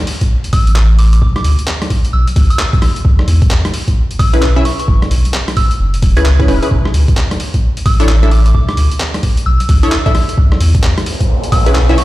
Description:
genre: UK garage, two-step garage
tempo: 131 BPM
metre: 4/4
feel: swing 62% on 16ths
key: B dorian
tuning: A4 = 438 Hz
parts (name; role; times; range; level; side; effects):
- boom bap sampler-style drum kit; drums; 0.1-12.0 s; handclaps, hi-hat, rim click; -20 LUFS; equal; overdrive
- electronic kick drum; drums; 0.2-11.6 s; none; -11 LUFS; equal; overdrive
- soft synth bell; melody; 0.5-12.0 s; C#6 to G#6; -22 LUFS; equal; chorus, phaser, tape echo
- saturated sub bass; bass; 0.7-12.0 s; E1 to E2; -10 LUFS; equal; none
- punchy chord stab; stabs; 4.3-12.0 s; C#4 to E5; -18 LUFS; left 1 dB; chorus, tape echo
- riser; sound effects; 10.8-12.0 s; none; -21 LUFS; equal; none
room: little or no reverb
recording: played on a big sound system in a bare room, large studio reverb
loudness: -10 LUFS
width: side -17 dB against mid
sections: 0.0-12.0 A section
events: riser 10.8-12.0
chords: 0.0 Bm7; 2.8 C#m7; 4.7 F#9sus4; 6.7 Bm11; 10.1 C#m7

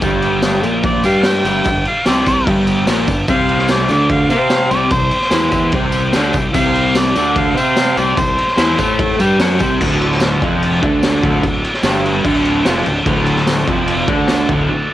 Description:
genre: garage rock duo or trio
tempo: 147 BPM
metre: 4/4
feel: straight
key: unclear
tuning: A4 = 435 Hz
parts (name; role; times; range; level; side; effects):
- combo organ; sustained chords; 0.0-14.9 s; C4 to B5; -28 LUFS; equal; none
- raw garage guitar; riff; 0.0-14.9 s; D2 to C5; -16 LUFS; equal; overdrive, cassette tape
- fuzz fingered electric bass; bass; 0.0-14.7 s; D1 to C3; -20 LUFS; equal; overdrive
- raw garage drum kit; drums; 0.0-14.6 s; crash cymbal, kick drum, snare drum; -18 LUFS; equal; cassette tape
- tambourine; percussion; 0.0-14.4 s; none; -34 LUFS; right 2 dB; none
- warm harmonica; melody; 0.9-9.0 s; C5 to G5; -18 LUFS; equal; overdrive, cassette tape
room: little or no reverb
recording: home recording on cassette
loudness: -12 LUFS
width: side -13 dB against mid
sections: 0.0-9.8 A section; 9.8-14.9 B section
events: harmonica solo 0.0-9.8; transistor combo organ fill 12.3-13.1; break 14.7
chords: 0.0 G5; 3.3 C5; 9.8 D

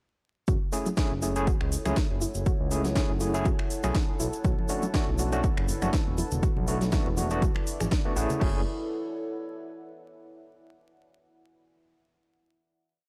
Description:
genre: deep house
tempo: 121 BPM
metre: 4/4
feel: swing 55% on 16ths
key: F# minor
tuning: A4 = 439 Hz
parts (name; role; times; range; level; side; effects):
- deep dark ambient pad; sustained chords; 1.8-8.6 s; D4 to A5; -43 LUFS; equal; chorus, built-in reverb, sidechain pumping
- soft round pluck; arpeggios; 0.5-8.6 s; F#3 to F#5; -39 LUFS; equal; chorus, sidechain pumping, tape echo
- smooth synth bass; bass; 0.5-8.6 s; E1 to C#2; -33 LUFS; equal; transformer saturation, sidechain pumping
- electronic kick drum; drums; 0.5-8.5 s; none; -30 LUFS; equal; overdrive
- house drum kit; drums; 0.5-8.5 s; crash cymbal, finger snaps, hi-hat, snare drum; -39 LUFS; equal; overdrive
- egg shaker; percussion; 0.5-8.4 s; none; -43 LUFS; equal; none
- warbly tape-like pad; texture; 1.8-10.4 s; E4 to D5; -41 LUFS; equal; chorus, built-in reverb, sidechain pumping
- overdriven tine electric piano; stabs; 0.7-8.6 s; A3 to G#4; -34 LUFS; equal; fast tremolo, vintage 12-bit sampler grit, sidechain pumping, tape echo
- congas; percussion; 4.4-8.4 s; none; -39 LUFS; equal; none
room: light reverb, digital ambience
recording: dry, gritty hardware recording, transformer saturation, vinyl crackle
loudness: -27 LUFS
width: mono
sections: 0.5-8.4 drop; 8.4-10.4 final chord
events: drop 0.5-8.4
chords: 0.5 F#m9; 4.2 Bm9; 6.2 E9sus4; 8.4 F#m9

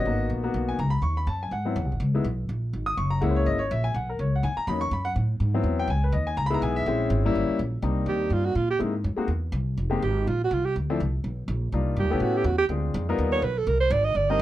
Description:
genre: jazz, small-group swing and bop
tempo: 247 BPM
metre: 4/4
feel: swing 57% on 8ths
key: G# minor, C minor from 7.8 s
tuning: A4 = 438 Hz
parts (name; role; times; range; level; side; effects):
- warm concert grand piano; accompaniment; 0.0-14.4 s; F3 to D#6; -27 LUFS; left 3 dB; none
- upright bass; bass; 0.0-14.4 s; F1 to Bb2; -26 LUFS; equal; none
- breathy alto saxophone; second line; 8.1-14.4 s; F4 to Eb5; -24 LUFS; right 4 dB; none
room: light reverb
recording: dark, warm production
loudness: -23 LUFS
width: side -14 dB against mid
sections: 0.1-7.8 A section; 7.8-14.4 A section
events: alto saxophone solo 7.8-14.4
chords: 0.1 G#m9; 1.0 D#m7b5; 1.5 G#7alt; 2.0 C#7sus2; 3.0 F#7; 3.9 Bmaj9; 4.9 F#madd11; 5.4 G#7alt; 5.9 C#m9; 6.9 A#m7b5; 7.3 Gdim7; 7.8 Cm9; 8.8 C7alt; 9.8 Fm11; 10.8 Dm7; 11.2 N.C.; 11.7 Cm11; 12.2 A7; 12.7 Dm7b5; 13.2 G7alt; 13.7 Cm9

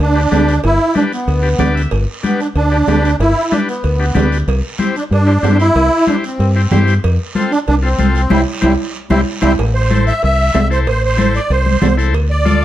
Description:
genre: latin, cumbia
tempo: 188 BPM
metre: 4/4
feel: straight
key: C major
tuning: A4 = 441 Hz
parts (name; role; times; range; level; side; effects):
- musette accordion; melody; 0.0-12.6 s; G3 to E5; -16 LUFS; right 1 dB; plate reverb
- deep dub fingered electric bass; bass; 0.0-12.6 s; G1 to G2; -14 LUFS; equal; none
- cowbell and timbales; percussion; 0.0-12.3 s; none; -22 LUFS; right 6 dB; none
- guiro; percussion; 0.0-12.6 s; none; -32 LUFS; right 5 dB; none
- combo organ; accompaniment; 0.1-12.6 s; D4 to E5; -21 LUFS; left 4 dB; none
- congas; percussion; 0.3-12.6 s; none; -18 LUFS; left 2 dB; none
room: light reverb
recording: dark, warm production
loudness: -12 LUFS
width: side -13 dB against mid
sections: 0.0-9.6 A section; 9.6-12.6 B section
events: transistor combo organ fill 1.4-1.9; band accent 8.3-9.6; drum fill 8.8-9.6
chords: 0.0 G; 4.5 C; 7.0 F; 8.3 C; 9.6 Am; 12.1 Dm

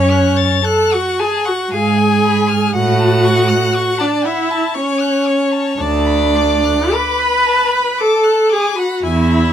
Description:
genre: classical, slow romantic movement for string quartet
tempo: 51-60 BPM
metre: 3/4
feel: rubato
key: unclear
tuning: A4 = 440 Hz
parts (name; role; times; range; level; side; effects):
- rich violin; melody; 0.0-9.5 s; F5 to A6; -23 LUFS; left 7 dB; none
- bright violin; second line; 0.0-9.5 s; C#5 to B5; -22 LUFS; left 4 dB; none
- dark viola; accompaniment; 0.0-9.5 s; C#4 to B4; -15 LUFS; equal; none
- rich cello; bass; 0.0-9.5 s; D2 to A2; -17 LUFS; right 3 dB; none
room: light reverb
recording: none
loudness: -12 LUFS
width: side -9 dB against mid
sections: 0.0-9.5 A section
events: none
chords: 0.0 F#m; 1.7 Fdim/Ab; 2.8 F#m/A; 5.8 Bm7/D

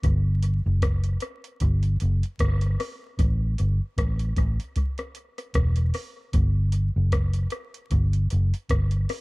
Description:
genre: roots reggae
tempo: 76 BPM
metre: 4/4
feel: swing 56% on 16ths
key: unclear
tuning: A4 = 438 Hz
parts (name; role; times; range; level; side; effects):
- vintage muted fingered electric bass; bass; 0.0-9.1 s; E1 to A1; -22 LUFS; equal; none
- soft vintage rhythm box; drums; 0.0-9.2 s; hi-hat, kick drum, rim click; -26 LUFS; equal; tape echo
room: little or no reverb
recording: echo-heavy mix, vinyl crackle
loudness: -22 LUFS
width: side -24 dB against mid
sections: 0.0-9.2 A section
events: none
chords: none

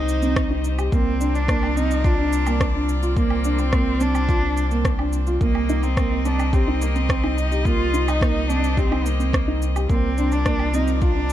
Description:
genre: piano and strings electronica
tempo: 107 BPM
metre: 4/4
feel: straight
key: C minor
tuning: A4 = 440 Hz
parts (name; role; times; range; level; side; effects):
- dark cello; melody; 0.0-11.3 s; Bb3 to F4; -26 LUFS; equal; ping-pong delay
- warm string quartet; sustained chords; 0.0-11.3 s; C4 to Eb5; -31 LUFS; left 2 dB; none
- felt-muted upright piano; riff; 0.0-11.3 s; Bb3 to G4; -25 LUFS; right 2 dB; ping-pong delay
- warm sub bass; bass; 0.0-11.3 s; C2; -23 LUFS; equal; sidechain pumping
- electronic shaker, rim click and woodblock; drums; 0.1-11.3 s; none; -30 LUFS; right 1 dB; overdrive
- electronic kick drum; drums; 0.4-11.1 s; none; -22 LUFS; equal; none
room: light reverb, digital ambience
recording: dark, warm production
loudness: -18 LUFS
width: side -12 dB against mid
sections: 0.0-11.3 A section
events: none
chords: 0.0 Cm; 0.9 Bbadd9/C; 5.4 Cm7; 9.9 Bbadd9/C

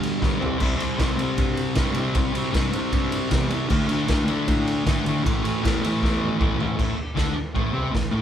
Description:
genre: garage rock duo or trio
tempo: 155 BPM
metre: 4/4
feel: straight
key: unclear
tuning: A4 = 438 Hz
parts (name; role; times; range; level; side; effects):
- fuzz guitar; riff; 0.0-8.2 s; G2 to D4; -23 LUFS; left 1 dB; distortion
- growling picked electric bass; bass; 0.0-8.2 s; G#1 to A2; -31 LUFS; equal; overdrive, tube saturation
- raw garage drum kit; drums; 0.0-8.2 s; crash cymbal, kick drum, ride cymbal, snare drum, toms; -24 LUFS; equal; none
room: light reverb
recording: band playing live in one room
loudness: -20 LUFS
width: side -9 dB against mid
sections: 0.0-6.8 A section; 6.8-8.2 B section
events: drum fill 0.2-0.6, 6.0-6.8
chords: 0.4 C5; 3.7 D5; 5.2 A; 6.8 A5

